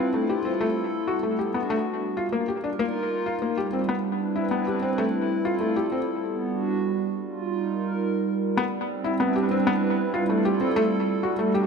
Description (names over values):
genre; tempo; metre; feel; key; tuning
IDM; 96 BPM; 4/4; straight; unclear; A4 = 440 Hz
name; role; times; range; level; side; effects
hollow soft pad; sustained chords; 0.0-11.7 s; G3 to B4; -25 LUFS; right 2 dB; chorus
felt-muted upright piano; arpeggios; 0.0-11.6 s; A3 to G4; -26 LUFS; left 3 dB; low-pass filter, tape echo
room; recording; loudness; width
moderate echo chamber reverb, RT60 2.5 s; echo-heavy mix; -23 LUFS; side -5 dB against mid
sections
0.0-8.6 A section; 8.6-11.7 B section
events
filter sweep on felt piano 0.0-8.6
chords
0.0 Fmaj9; 1.1 Gmaj9; 2.0 Ebadd9; 3.6 Cmaj9; 4.8 Fmaj9; 6.1 Gmaj9; 7.0 Ebadd9; 8.6 Cmaj9; 9.8 Fmaj9; 11.1 Gmaj9